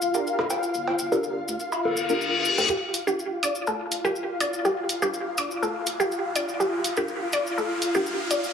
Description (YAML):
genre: minimal techno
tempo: 123 BPM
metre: 4/4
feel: straight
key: G minor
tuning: A4 = 440 Hz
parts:
  - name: round analog bass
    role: bass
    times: 0.0-2.7 s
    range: D1 to D2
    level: -42 LUFS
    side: left 1 dB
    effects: tube saturation, high-pass filter
  - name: maracas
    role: percussion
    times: 0.0-8.5 s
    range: none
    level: -34 LUFS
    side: left 3 dB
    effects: none
  - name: flickering grainy texture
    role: texture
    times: 0.0-8.5 s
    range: F4 to F5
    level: -29 LUFS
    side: left 2 dB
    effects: built-in reverb
  - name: filtered dub chord stab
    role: stabs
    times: 0.1-8.1 s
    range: D4 to Bb4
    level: -30 LUFS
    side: equal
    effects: phaser, wide subtle chorus, digital delay
  - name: cowbell and bongos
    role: percussion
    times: 0.4-2.7 s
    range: none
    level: -29 LUFS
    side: right 1 dB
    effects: overdrive, digital delay
  - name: reverse cymbal and riser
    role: sound effects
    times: 1.9-8.5 s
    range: none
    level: -29 LUFS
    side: left 3 dB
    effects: none
  - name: resonant blip pluck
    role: riff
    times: 2.7-8.3 s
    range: G4 to D5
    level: -26 LUFS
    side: equal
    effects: chorus, digital delay
  - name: electronic hi-hat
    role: drums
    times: 2.9-8.4 s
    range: none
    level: -29 LUFS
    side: right 2 dB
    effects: none
room: moderate digital room reverb, RT60 1.4 s, digital ambience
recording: heavily compressed radio sound, small room ambience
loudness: -23 LUFS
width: side -7 dB against mid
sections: 0.0-2.7 A section; 2.7-8.5 B section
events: reverse cymbal 1.9-2.7; build-up 2.7-8.5; riser 2.7-8.5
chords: 0.0 G7(no3)